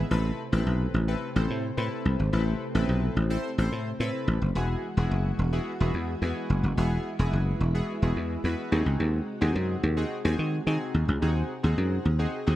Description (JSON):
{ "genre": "pop", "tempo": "108 BPM", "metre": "4/4", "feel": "straight", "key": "unclear", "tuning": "A4 = 441 Hz", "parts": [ { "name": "chorused retro synth keys", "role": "accompaniment", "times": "0.0-12.6 s", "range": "B3 to C5", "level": "-33 LUFS", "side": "left 2 dB", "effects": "none" }, { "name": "ensemble organ-string", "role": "sustained chords", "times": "0.0-12.6 s", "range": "C3 to G#4", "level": "-35 LUFS", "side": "equal", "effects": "ensemble chorus" }, { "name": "dry thumbed slap bass", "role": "bass", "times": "0.0-12.6 s", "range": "E1 to D#3", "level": "-25 LUFS", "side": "equal", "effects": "none" } ], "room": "light reverb, digital ambience", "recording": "rough home demo mix", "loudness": "-25 LUFS", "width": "side -14 dB against mid", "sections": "0.1-12.6 A section", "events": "none", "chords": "0.1 Amadd9; 4.6 Eadd9; 8.7 G#7", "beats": "| 0.11 0.67 1.22 1.78 | 2.33 2.89 3.44 4.00 | 4.55 5.11 5.67 6.22 | 6.78 7.33 7.89 8.44 | 9.00 9.55 10.11 10.66 | 11.22 11.78 12.33" }